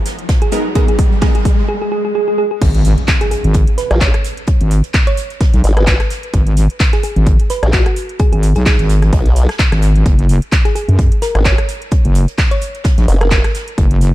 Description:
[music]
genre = bass house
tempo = 129 BPM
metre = 4/4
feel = swing 56% on 16ths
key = unclear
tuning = A4 = 440 Hz
[part]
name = riser, swell and impact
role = sound effects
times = 0.0-4.5 s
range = none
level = -22 LUFS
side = right 1 dB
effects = none
[part]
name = house drum kit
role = drums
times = 0.1-14.1 s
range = crash cymbal, handclaps, hi-hat, rim click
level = -22 LUFS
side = equal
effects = studio reverb
[part]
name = jazz brush drum kit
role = drums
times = 0.1-14.1 s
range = hi-hat, snare drum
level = -31 LUFS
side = right 2 dB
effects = high-pass filter on hats, studio reverb, high-pass filter on snare, high-pass filter on room
[part]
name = electronic kick drum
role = drums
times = 0.3-13.9 s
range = none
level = -13 LUFS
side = equal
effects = studio reverb
[part]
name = thumb-piano-like synth pluck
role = melody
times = 0.4-13.9 s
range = F#4 to C#5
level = -22 LUFS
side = right 1 dB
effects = chorus, dub echo
[part]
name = orchestra-hit-like synth stab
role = stabs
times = 0.5-1.3 s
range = G#3 to A#4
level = -23 LUFS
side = right 1 dB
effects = built-in reverb, sidechain pumping, dub echo
[part]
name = wobble bass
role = bass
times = 2.6-14.1 s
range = F#1 to F#2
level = -11 LUFS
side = equal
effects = chorus, sidechain pumping
[part]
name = formant-sweep wobble bass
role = bass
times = 3.9-13.4 s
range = F#1 to B1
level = -12 LUFS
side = equal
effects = chorus, tube saturation, sidechain pumping
[sound]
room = digital ambience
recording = dark, warm production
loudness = -11 LUFS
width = side -16 dB against mid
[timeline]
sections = 0.0-2.6 A section; 2.6-14.1 B section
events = build-up 0.0-2.6; drum fill 0.0-1.7; riser 0.0-1.7; break 1.7-2.6; swell 1.7-2.6; drop 2.6-14.1; impact 2.6-4.5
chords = 0.0 G#madd9; 2.6 N.C.; 10.1 F#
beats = 0.29 | 0.76 1.22 1.69 2.15 | 2.62 3.08 3.54 4.01 | 4.48 4.94 5.41 5.87 | 6.34 6.80 7.27 7.73 | 8.20 8.66 9.13 9.59 | 10.06 10.52 10.99 11.45 | 11.92 12.38 12.85 13.31 | 13.78

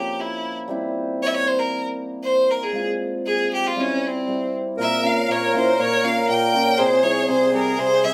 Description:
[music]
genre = klezmer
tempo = 118 BPM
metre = 2/4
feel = straight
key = C phrygian dominant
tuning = A4 = 439 Hz
[part]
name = bright violin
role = melody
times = 0.0-8.1 s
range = C4 to G5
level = -23 LUFS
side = equal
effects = none
[part]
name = hammered dulcimer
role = accompaniment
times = 0.0-8.1 s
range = Bb2 to G4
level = -27 LUFS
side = equal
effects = none
[part]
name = accordion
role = second line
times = 4.8-8.1 s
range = Ab4 to Bb4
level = -26 LUFS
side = equal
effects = light tremolo tuning
[sound]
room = wet studio reverb, RT60 0.8 s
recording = band playing live in one room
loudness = -21 LUFS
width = mono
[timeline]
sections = 0.0-4.8 A section; 4.8-8.1 B section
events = speeding up 0.0-8.1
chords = 0.0 Bbm; 0.7 C; 2.7 Fm; 3.8 C; 4.8 Bbm; 6.8 C5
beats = 0.18 | 0.69 1.21 | 1.72 2.24 | 2.75 3.26 | 3.77 4.27 | 4.78 5.28 | 5.79 6.29 | 6.79 7.29 | 7.79

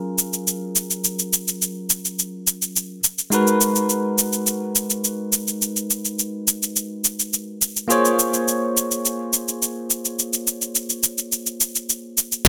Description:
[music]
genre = sunset chillout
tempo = 105 BPM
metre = 4/4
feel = straight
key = unclear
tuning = A4 = 441 Hz
[part]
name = bell-like tine electric piano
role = accompaniment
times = 0.0-12.5 s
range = Gb3 to Db5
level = -27 LUFS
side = equal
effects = low-pass filter, tape echo
[part]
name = electronic cabasa and crash cymbal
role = drums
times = 0.2-12.5 s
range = none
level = -21 LUFS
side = equal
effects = none
[sound]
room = moderate lush hall reverb, RT60 2.1 s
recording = dreamy mix soaked in reverb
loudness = -21 LUFS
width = mono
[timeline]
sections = 0.0-12.5 A section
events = filter sweep on tine electric piano 0.0-12.5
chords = 0.0 Gbmaj7; 3.3 Abm7; 7.9 Bbm7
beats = 0.47 | 1.04 1.61 2.18 2.76 | 3.33 3.90 4.47 5.04 | 5.61 6.18 6.76 7.33 | 7.90 8.47 9.04 9.61 | 10.18 10.76 11.33 11.90 | 12.47

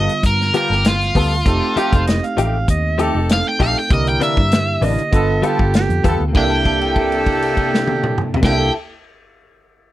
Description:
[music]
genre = straight-eighth soul blues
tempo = 98 BPM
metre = 4/4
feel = straight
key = C mixolydian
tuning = A4 = 440 Hz
[part]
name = cranked stack guitar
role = melody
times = 0.0-8.7 s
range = F4 to G5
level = -20 LUFS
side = equal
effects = overdrive
[part]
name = tine electric piano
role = accompaniment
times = 0.0-8.7 s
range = D3 to A4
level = -23 LUFS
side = right 4 dB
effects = medium stereo tremolo
[part]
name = direct-recorded clean electric guitar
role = stabs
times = 0.0-8.8 s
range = C3 to A4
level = -22 LUFS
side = left 4 dB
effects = ensemble chorus
[part]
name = vintage muted fingered electric bass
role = bass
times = 0.0-8.7 s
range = F1 to G2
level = -20 LUFS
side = equal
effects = none
[part]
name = warm soul drum kit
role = drums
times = 0.1-8.6 s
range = crash cymbal, hi-hat, kick drum, snare drum, toms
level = -19 LUFS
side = equal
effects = none
[part]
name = clear horn section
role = sustained chords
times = 0.5-8.7 s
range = Bb3 to Bb4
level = -25 LUFS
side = left 2 dB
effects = none
[part]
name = overdriven harmonica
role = second line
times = 1.8-8.7 s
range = D4 to F5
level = -22 LUFS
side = right 4 dB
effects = none
[sound]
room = little or no reverb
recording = none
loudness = -14 LUFS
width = side -15 dB against mid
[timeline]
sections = 0.0-6.3 A section; 6.3-8.8 B section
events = held note 6.3-8.4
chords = 0.0 G9; 1.5 F9; 3.9 C9; 5.1 G9; 6.3 C13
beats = 0.23 0.84 | 1.46 2.07 2.68 3.29 | 3.90 4.51 5.13 5.74 | 6.35 6.96 7.57 8.18

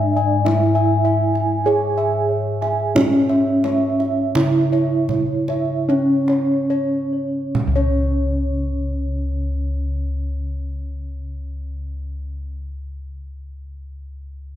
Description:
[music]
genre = Javanese gamelan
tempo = 34-53 BPM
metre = 4/4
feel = straight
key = unclear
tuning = A4 = 440 Hz
[part]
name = gamelan-type bronze metallophone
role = melody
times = 0.0-12.6 s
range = C#4 to G#4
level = -20 LUFS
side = right 1 dB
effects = none
[part]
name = gamelan-type bronze metallophone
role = arpeggios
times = 0.0-12.6 s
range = C#5 to G#5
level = -27 LUFS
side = right 8 dB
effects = none
[part]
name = gamelan-type bossed gongs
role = bass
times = 0.0-12.5 s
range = C#2 to G#4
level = -23 LUFS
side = left 1 dB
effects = none
[part]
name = gamelan-type bossed gongs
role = arpeggios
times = 0.2-12.6 s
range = C#5 to G#5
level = -26 LUFS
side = left 4 dB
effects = none
[part]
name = kendang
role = percussion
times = 0.5-8.4 s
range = none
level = -26 LUFS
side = right 4 dB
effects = none
[sound]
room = light reverb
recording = faint mains hum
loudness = -17 LUFS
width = side -11 dB against mid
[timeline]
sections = 0.0-7.6 A section; 7.6-14.6 B section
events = slowing down 0.0-7.6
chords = none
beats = 0.45 | 1.65 2.95 4.35 5.88 | 7.55 9.31 11.07

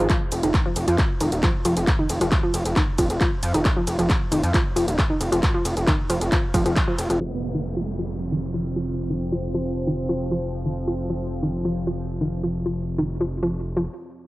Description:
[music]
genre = driving peak-time techno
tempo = 135 BPM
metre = 4/4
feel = straight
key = unclear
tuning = A4 = 438 Hz
[part]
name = analog pluck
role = riff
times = 0.0-13.8 s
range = Eb3 to F3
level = -25 LUFS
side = equal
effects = chorus, overdrive, sidechain pumping, cassette tape, tape echo
[part]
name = gritty driven synth bass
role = bass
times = 0.0-13.9 s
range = Eb1 to F2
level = -26 LUFS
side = equal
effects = sidechain pumping
[part]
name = electronic kick drum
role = drums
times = 0.1-6.9 s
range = none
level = -22 LUFS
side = equal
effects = cassette tape
[part]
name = punchy analog drum machine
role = drums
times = 0.1-7.2 s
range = handclaps, hi-hat, ride cymbal, shaker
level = -28 LUFS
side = equal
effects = sidechain pumping on hats, cassette tape, sidechain pumping on perc, sidechain pumping on cymbals
[part]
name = deep dark ambient pad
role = drone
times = 8.2-13.9 s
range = F3 to C4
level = -30 LUFS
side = equal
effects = chorus, built-in reverb, sidechain pumping, cassette tape
[part]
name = downlifter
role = sound effects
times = 7.3-10.8 s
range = none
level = -34 LUFS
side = right 4 dB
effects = none
[sound]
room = light reverb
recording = home recording on cassette, low-pass filter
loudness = -20 LUFS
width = side -19 dB against mid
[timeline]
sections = 0.0-7.2 A section; 7.2-14.3 B section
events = drop 0.0-7.2; band accent 6.8; filter sweep on synth arpeggio sound 7.2-14.3; filter sweep 7.2-14.3; stop 13.9-14.3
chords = 0.0 F5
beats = | 0.10 0.54 0.98 1.43 | 1.87 2.32 2.76 3.21 | 3.65 4.10 4.54 4.99 | 5.43 5.87 6.32 6.76 | 7.21 7.65 8.10 8.54 | 8.98 9.43 9.87 10.32 | 10.76 11.21 11.65 12.10 | 12.54 12.98 13.43

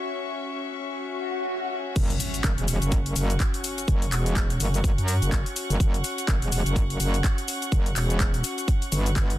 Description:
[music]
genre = bass house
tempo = 125 BPM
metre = 4/4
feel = swing 58% on 16ths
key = unclear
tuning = A4 = 440 Hz
[part]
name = percussive organ stab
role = stabs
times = 0.0-1.7 s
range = C#4 to C#5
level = -41 LUFS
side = right 2 dB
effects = ensemble chorus, cassette tape, sidechain pumping, digital delay
[part]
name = warm chamber string section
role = texture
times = 0.0-9.4 s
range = C#4 to C#6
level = -32 LUFS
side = left 2 dB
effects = sidechain pumping
[part]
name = swell and impact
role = sound effects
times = 1.1-3.9 s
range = none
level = -33 LUFS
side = equal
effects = none
[part]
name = metallic wobble bass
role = bass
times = 2.0-9.4 s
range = E1 to F#2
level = -25 LUFS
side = equal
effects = chorus, tube saturation, sidechain pumping
[part]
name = electronic kick drum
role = drums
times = 2.0-9.3 s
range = none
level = -24 LUFS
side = equal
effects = none
[part]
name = house drum kit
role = drums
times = 2.0-9.4 s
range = crash cymbal, handclaps, hi-hat, shaker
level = -30 LUFS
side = left 2 dB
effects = low-pass filter on hats, low-pass filter on cymbals, low-pass filter on perc, low-pass filter on snare
[sound]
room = digital ambience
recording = dense, heavily limited modern master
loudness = -23 LUFS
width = side -14 dB against mid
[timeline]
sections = 0.0-2.0 A section; 2.0-9.4 B section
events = swell 1.1-2.0; drop 2.0-9.4; impact 2.0-3.9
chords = 0.0 F#5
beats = | 0.04 0.52 1.00 1.48 | 1.96 2.44 2.92 3.40 | 3.88 4.36 4.84 5.32 | 5.80 6.28 6.76 7.24 | 7.72 8.20 8.68 9.16

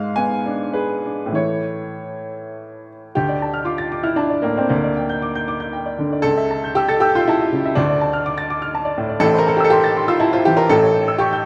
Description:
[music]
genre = classical, romantic character piece for solo piano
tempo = 93-129 BPM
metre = 3/4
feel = rubato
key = D minor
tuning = A4 = 440 Hz
[part]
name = clear upright piano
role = solo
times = 0.0-11.5 s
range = A1 to A6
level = -19 LUFS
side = equal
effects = none
[sound]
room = moderate scoring stage reverb, RT60 1.7 s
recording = none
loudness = -19 LUFS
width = mono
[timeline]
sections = 0.0-3.2 A section; 3.2-11.5 B section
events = none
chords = 0.0 G#dim7; 1.3 A; 3.2 Dm; 4.7 Gm/D; 6.3 A7/C#; 7.8 Dm; 9.2 Am; 10.7 A7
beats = 0.17 0.73 | 1.35 1.99 2.58 | 3.16 3.67 4.18 | 4.71 5.23 5.74 | 6.25 6.77 7.28 | 7.78 8.27 8.74 | 9.22 9.72 10.21 | 10.70 11.20

